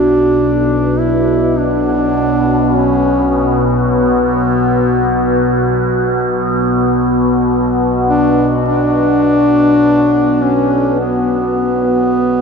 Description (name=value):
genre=dark ambient drone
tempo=51 BPM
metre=4/4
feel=straight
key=B minor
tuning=A4 = 440 Hz
part: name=mellow duduk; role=melody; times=0.0-12.4 s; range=B3 to E4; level=-14 LUFS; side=left 1 dB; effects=ping-pong delay
part: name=deep dark ambient pad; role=sustained chords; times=0.0-12.4 s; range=B3 to F#5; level=-16 LUFS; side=left 2 dB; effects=chorus, built-in reverb
part: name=overtone-sweeping drone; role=drone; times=0.0-12.4 s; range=B1 to B2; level=-16 LUFS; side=right 2 dB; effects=chorus, built-in reverb
room=wet huge ambient reverb, RT60 8.6 s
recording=in a vast, echoing space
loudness=-11 LUFS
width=side -5 dB against mid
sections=0.0-12.4 A section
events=none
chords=0.0 Bm